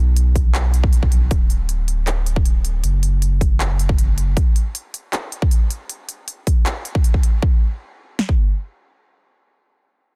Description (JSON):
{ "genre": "future bass", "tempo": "157 BPM", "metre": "4/4", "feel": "half-time", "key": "D major", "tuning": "A4 = 440 Hz", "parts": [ { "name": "saturated sub bass", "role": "bass", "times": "0.0-4.3 s", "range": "D1 to B1", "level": "-20 LUFS", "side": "equal", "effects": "sidechain pumping" }, { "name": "big-room dance drum kit", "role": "drums", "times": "0.2-7.3 s", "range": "handclaps, hi-hat", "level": "-30 LUFS", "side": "equal", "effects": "overdrive" }, { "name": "big-room dance drum kit", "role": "drums", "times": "0.4-8.4 s", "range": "kick drum, snare drum", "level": "-19 LUFS", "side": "equal", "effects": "overdrive" } ], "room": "little or no reverb", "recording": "dense, heavily limited modern master", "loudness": "-19 LUFS", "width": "mono", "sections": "0.0-7.4 A section; 7.4-10.2 B section", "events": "drop 0.0-7.4", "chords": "none", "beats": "0.16 0.55 0.93 | 1.31 1.69 2.07 2.46 | 2.84 3.22 3.60 3.98 | 4.37 4.75 5.13 5.51 | 5.89 6.28 6.66 7.04 | 7.42 7.81 8.19" }